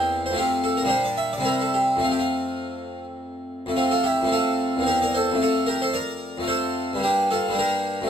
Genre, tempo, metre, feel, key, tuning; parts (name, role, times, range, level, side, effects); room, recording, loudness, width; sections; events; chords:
classical, baroque-style suite movement for harpsichord; 100-115 BPM; 3/4; rubato; F major; A4 = 440 Hz
harpsichord; solo; 0.0-8.1 s; E2 to G5; -21 LUFS; equal
moderate studio reverb, RT60 0.6 s; -20 LUFS; side -8 dB against mid
0.0-3.8 A section; 3.8-8.1 B section
0.4 F; 0.9 Gm/Bb; 1.5 C; 2.0 F; 4.9 C7/E; 5.4 F; 7.0 Gm